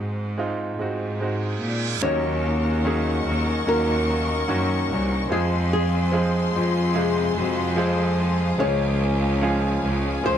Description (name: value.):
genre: pop ballad.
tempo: 73 BPM.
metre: 4/4.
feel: straight.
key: unclear.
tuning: A4 = 440 Hz.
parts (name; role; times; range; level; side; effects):
flamenco guitar; melody; 0.0-10.4 s; Ab4 to Db5; -26 LUFS; left 2 dB; none.
clear concert grand piano; accompaniment; 0.0-10.4 s; Ab2 to F5; -27 LUFS; right 2 dB; none.
bright studio cello section; bass; 0.0-10.4 s; C2 to Bb2; -24 LUFS; equal; none.
reverse cymbal; sound effects; 1.3-2.0 s; none; -31 LUFS; right 8 dB; none.
warm studio string section; sustained chords; 2.0-10.4 s; Db4 to Db6; -30 LUFS; left 3 dB; none.
electric guitar through a small old amp; arpeggios; 2.0-10.4 s; Db3 to Bb4; -30 LUFS; left 1 dB; none.
mellow French horn section; second line; 6.6-8.4 s; F4 to Ab4; -28 LUFS; left 10 dB; none.
room: little or no reverb.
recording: dry, close 1970s-style studio recording.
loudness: -20 LUFS.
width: side -9 dB against mid.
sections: 0.0-2.0 A section; 2.0-10.4 B section.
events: reverse cymbal 1.3-2.0.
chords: 0.0 Ab7; 2.0 Ebm7; 5.3 Fm; 8.6 Db.